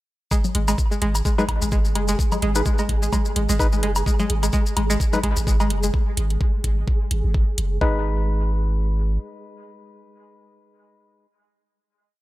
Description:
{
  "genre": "minimal techno",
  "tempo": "128 BPM",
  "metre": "4/4",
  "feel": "swing 56% on 16ths",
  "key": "G# minor",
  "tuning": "A4 = 438 Hz",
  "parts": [
    { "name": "string-like resonator pluck", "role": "riff", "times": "0.3-8.0 s", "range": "G#3", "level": "-27 LUFS", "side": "right 1 dB", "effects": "chorus, sidechain pumping, dub echo" },
    { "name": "electronic kick drum", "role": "drums", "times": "0.3-7.9 s", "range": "none", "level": "-21 LUFS", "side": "equal", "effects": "none" },
    { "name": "maracas", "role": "percussion", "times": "0.3-5.9 s", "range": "none", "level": "-30 LUFS", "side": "left 3 dB", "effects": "none" },
    { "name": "woodblock and congas", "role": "percussion", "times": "0.3-5.7 s", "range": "none", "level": "-31 LUFS", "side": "left 3 dB", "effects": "tape echo" },
    { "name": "flickering grainy texture", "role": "texture", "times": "0.7-7.8 s", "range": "G#3 to G#4", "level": "-32 LUFS", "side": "right 1 dB", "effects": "built-in reverb, sidechain pumping" },
    { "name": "punchy sub bass", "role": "bass", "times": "0.5-9.2 s", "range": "F#1 to G#1", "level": "-22 LUFS", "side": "equal", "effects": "sidechain pumping" },
    { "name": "electronic hi-hat", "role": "drums", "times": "0.5-7.7 s", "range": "none", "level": "-28 LUFS", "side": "right 1 dB", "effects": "none" },
    { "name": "percussive organ stab", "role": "stabs", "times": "1.4-11.3 s", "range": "G#3 to B4", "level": "-28 LUFS", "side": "left 3 dB", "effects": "chorus, tape echo" }
  ],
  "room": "digital ambience",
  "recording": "none",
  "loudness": "-19 LUFS",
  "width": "side -17 dB against mid",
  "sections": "0.3-7.8 groove; 7.8-11.6 final chord",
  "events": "none",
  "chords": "0.3 N.C.; 7.8 G#m",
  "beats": "| 0.31 0.78 1.25 1.72 | 2.19 2.66 3.13 3.60 | 4.06 4.53 5.00 5.47 | 5.94 6.41 6.88 7.34 | 7.81 8.28 8.75 9.22 | 9.69 10.16 10.63 11.10"
}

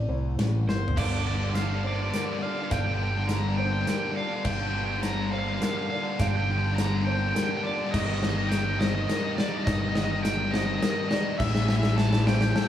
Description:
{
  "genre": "post-rock",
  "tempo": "104 BPM",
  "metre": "3/4",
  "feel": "straight",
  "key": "G minor",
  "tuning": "A4 = 441 Hz",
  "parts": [
    { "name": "felt-muted upright piano", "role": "arpeggios", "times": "0.0-12.7 s", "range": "A4 to F5", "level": "-37 LUFS", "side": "right 2 dB", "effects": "digital delay" },
    { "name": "mellow electric guitar", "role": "arpeggios", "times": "0.0-12.7 s", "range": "G2 to A4", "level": "-34 LUFS", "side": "left 1 dB", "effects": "digital delay" },
    { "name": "growling picked electric bass", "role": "bass", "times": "0.0-12.5 s", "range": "G1 to C2", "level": "-28 LUFS", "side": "equal", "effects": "overdrive" },
    { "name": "big rock drum kit", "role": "drums", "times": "0.4-12.7 s", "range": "crash cymbal, hi-hat, kick drum, ride cymbal, snare drum, toms", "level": "-30 LUFS", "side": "left 1 dB", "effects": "none" },
    { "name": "crunchy overdriven guitar", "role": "melody", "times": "0.7-12.7 s", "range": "C5 to Bb5", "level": "-31 LUFS", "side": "equal", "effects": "spring reverb, digital delay" },
    { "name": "distorted electric guitar", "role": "riff", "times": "1.0-12.7 s", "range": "G2 to E3", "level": "-32 LUFS", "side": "left 1 dB", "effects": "overdrive" }
  ],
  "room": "light reverb",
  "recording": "small room ambience",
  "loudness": "-24 LUFS",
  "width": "side -11 dB against mid",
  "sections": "1.0-12.7 A section",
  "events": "drum fill 0.7, 1.0-12.7; build-up 1.0-12.7",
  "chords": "0.0 Am; 1.0 Gm7; 7.9 Cmadd9/G; 11.4 Am",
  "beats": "0.39 | 0.97 1.55 2.14 | 2.72 3.30 3.88 | 4.46 5.04 5.62 | 6.20 6.78 7.36 | 7.93 8.51 9.09 | 9.67 10.24 10.82 | 11.40 11.97 12.55"
}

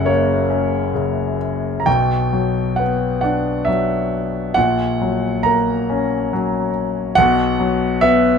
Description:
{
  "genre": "classical, lyrical solo piano",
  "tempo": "65-71 BPM",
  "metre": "3/4",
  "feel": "rubato",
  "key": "B harmonic minor",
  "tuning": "A4 = 440 Hz",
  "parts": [
    { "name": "clear grand piano", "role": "solo", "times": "0.0-8.4 s", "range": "F#1 to A#5", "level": "-16 LUFS", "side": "left 1 dB", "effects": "none" }
  ],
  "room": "moderate studio reverb, RT60 0.6 s",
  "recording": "none",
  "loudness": "-16 LUFS",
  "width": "side -6 dB against mid",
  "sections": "0.0-8.4 A section",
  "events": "none",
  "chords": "0.0 F#; 1.9 Bm; 4.6 F#/A#; 7.2 B5",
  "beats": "0.06 0.95 | 1.87 2.79 3.68 | 4.57 5.46 6.32 | 7.17 8.03"
}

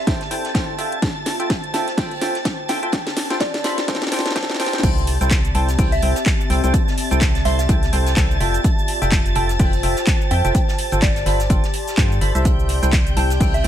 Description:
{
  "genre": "piano house",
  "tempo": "126 BPM",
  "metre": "4/4",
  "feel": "swing 57% on 16ths",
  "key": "C major",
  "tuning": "A4 = 440 Hz",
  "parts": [
    { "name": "soft synth bell", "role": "melody", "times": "0.0-13.6 s", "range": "D5 to A5", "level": "-28 LUFS", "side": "right 1 dB", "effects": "chorus, phaser, ping-pong delay" },
    { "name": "dark studio violin section", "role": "sustained chords", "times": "0.0-13.7 s", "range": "G5 to A6", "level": "-29 LUFS", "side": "right 1 dB", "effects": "sidechain pumping" },
    { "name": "warbly tape-like pad", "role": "texture", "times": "0.0-13.7 s", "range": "C4 to C6", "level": "-28 LUFS", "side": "left 1 dB", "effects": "chorus, built-in reverb, sidechain pumping" },
    { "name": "percussive organ stab", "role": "riff", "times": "0.1-13.7 s", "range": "E4 to C6", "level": "-26 LUFS", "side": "equal", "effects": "lush chorus, sidechain pumping, ping-pong delay" },
    { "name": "electronic kick drum", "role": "drums", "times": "0.1-13.5 s", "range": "none", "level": "-19 LUFS", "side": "equal", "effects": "overdrive" },
    { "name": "house drum kit", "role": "drums", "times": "0.1-13.7 s", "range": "crash cymbal, handclaps, hi-hat, shaker, snare drum", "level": "-25 LUFS", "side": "left 1 dB", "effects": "overdrive" },
    { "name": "warm soul drum kit", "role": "drums", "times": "0.1-13.7 s", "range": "hi-hat, snare drum", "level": "-34 LUFS", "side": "right 2 dB", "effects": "sidechain pumping on hats, high-pass filter on hats, high-pass filter on snare, high-pass filter on room" },
    { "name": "organ-like FM bass", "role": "bass", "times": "4.8-13.7 s", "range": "F1 to G2", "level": "-20 LUFS", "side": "equal", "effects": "sidechain pumping" }
  ],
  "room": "light reverb, digital ambience",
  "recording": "high-pass filter",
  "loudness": "-16 LUFS",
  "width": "side -11 dB against mid",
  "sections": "0.0-4.8 A section; 4.8-13.7 B section",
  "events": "build-up 0.0-4.8; drum fill 0.0-4.8; filter sweep on synth stab 0.0-4.8; filter sweep 0.0-4.8; drop 4.8-13.7",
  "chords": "0.0 C6; 0.8 Fmaj9; 2.9 G9sus4; 4.8 C6; 8.4 Fmaj9; 10.5 G9sus4; 12.5 C6",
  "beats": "0.07 0.55 | 1.02 1.50 1.98 2.45 | 2.93 3.40 3.88 4.36 | 4.83 5.31 5.79 6.26 | 6.74 7.21 7.69 8.17 | 8.64 9.12 9.60 10.07 | 10.55 11.02 11.50 11.98 | 12.45 12.93 13.40"
}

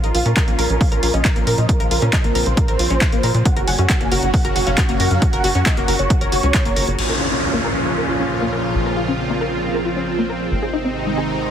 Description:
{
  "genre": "uplifting trance",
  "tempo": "136 BPM",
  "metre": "4/4",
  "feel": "straight",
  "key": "Bb minor",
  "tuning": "A4 = 440 Hz",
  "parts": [
    { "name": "big supersaw lead", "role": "melody", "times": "0.0-6.9 s", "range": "Gb4 to Ab5", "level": "-24 LUFS", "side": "right 2 dB", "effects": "sidechain pumping, low-pass filter, dub echo" },
    { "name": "supersaw pad", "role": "sustained chords", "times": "0.0-11.5 s", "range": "Ab2 to Gb4", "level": "-23 LUFS", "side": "right 1 dB", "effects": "phaser, sidechain pumping" },
    { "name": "analog pluck", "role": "arpeggios", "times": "0.0-11.2 s", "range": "Ab3 to Bb4", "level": "-25 LUFS", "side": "left 3 dB", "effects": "lush chorus, sidechain pumping, ping-pong delay" },
    { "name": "tight sequencer bass", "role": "bass", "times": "0.0-11.5 s", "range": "Gb1 to Bb2", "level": "-22 LUFS", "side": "equal", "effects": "sidechain pumping" },
    { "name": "punchy analog drum machine", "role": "drums", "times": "0.0-7.1 s", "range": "crash cymbal, handclaps, hi-hat", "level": "-23 LUFS", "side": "equal", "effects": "sidechain pumping on hats, sidechain pumping on cymbals" },
    { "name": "electronic kick drum", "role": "drums", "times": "0.4-6.6 s", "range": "none", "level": "-18 LUFS", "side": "equal", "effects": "none" },
    { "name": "downlifter", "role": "sound effects", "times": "7.0-10.5 s", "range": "none", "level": "-24 LUFS", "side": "equal", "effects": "none" }
  ],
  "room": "light reverb, digital ambience",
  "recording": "heavily compressed radio sound, multiband compression",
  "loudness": "-15 LUFS",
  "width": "side -9 dB against mid",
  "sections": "0.0-7.0 A section; 7.0-11.5 B section",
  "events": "filter sweep on synth pluck 7.0-11.5",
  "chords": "0.0 Bbm; 3.5 Gb; 7.0 Bbm; 10.5 Ab",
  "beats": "0.37 0.81 1.25 | 1.69 2.13 2.57 3.01 | 3.46 3.90 4.34 4.78 | 5.22 5.66 6.10 6.54 | 6.99 7.43 7.87 8.31 | 8.75 9.19 9.63 10.07 | 10.51 10.96 11.40"
}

